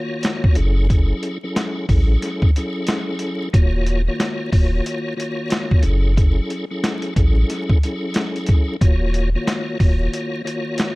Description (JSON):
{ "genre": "hip hop, boom-bap hip-hop", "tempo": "91 BPM", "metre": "4/4", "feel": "swing 61% on 16ths", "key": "Eb minor", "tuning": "A4 = 440 Hz", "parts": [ { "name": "tonewheel organ", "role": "accompaniment", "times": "0.0-11.0 s", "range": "Eb3 to Db5", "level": "-24 LUFS", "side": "left 1 dB", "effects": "overdrive, chorus vibrato, fast rotary speaker, high-pass filter, low-pass filter" }, { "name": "boom bap sampler-style drum kit", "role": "drums", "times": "0.2-11.0 s", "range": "hi-hat, kick drum, snare drum", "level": "-17 LUFS", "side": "equal", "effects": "none" }, { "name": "warm sub bass", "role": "bass", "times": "0.6-10.1 s", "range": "Eb1 to A1", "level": "-18 LUFS", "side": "equal", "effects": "none" } ], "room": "little or no reverb", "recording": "vinyl crackle", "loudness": "-17 LUFS", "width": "side -22 dB against mid", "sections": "0.0-8.8 A section; 8.8-11.0 A section", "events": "none", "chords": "0.0 Ebm9; 0.6 Gbm9; 3.5 Ebm9; 5.8 Gbm9; 8.8 Ebm9", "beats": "0.24 | 0.90 1.56 2.22 2.88 | 3.54 4.20 4.86 5.52 | 6.18 6.84 7.50 8.15 | 8.81 9.47 10.13 10.79" }